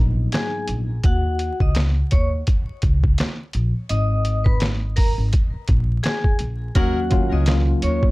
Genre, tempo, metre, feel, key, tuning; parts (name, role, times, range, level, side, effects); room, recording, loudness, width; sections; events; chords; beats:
hip hop, boom-bap hip-hop; 84 BPM; 4/4; swing 57% on 16ths; Eb minor; A4 = 440 Hz
tine electric piano; accompaniment; 0.0-0.9, 6.7-8.1 s; Eb2 to Gb4; -26 LUFS; equal; overdrive, fast stereo tremolo, high-pass filter, low-pass filter
upright bass; bass; 0.0-8.1 s; Ab1 to Eb2; -21 LUFS; equal
vibraphone with medium hard mallets; melody; 0.3-8.0 s; Gb4 to Eb6; -27 LUFS; left 2 dB; high-pass filter, low-pass filter, plate reverb
trip hop sampler-style drum kit; drums; 0.3-8.1 s; handclaps, hi-hat, kick drum, snare drum; -19 LUFS; equal
warm horn section; stabs; 6.8-7.0 s; Gb3 to Bb4; -34 LUFS; left 1 dB; high-pass filter, low-pass filter, plate reverb, ping-pong delay
little or no reverb; vinyl crackle; -18 LUFS; side -20 dB against mid
0.0-6.8 A section; 6.8-8.1 B section
0.0 Abm7; 1.0 Ebm7; 3.9 Ab5; 6.8 Ebm7
0.33 | 1.04 1.75 2.47 3.18 | 3.90 4.61 5.33 6.04 | 6.75 7.47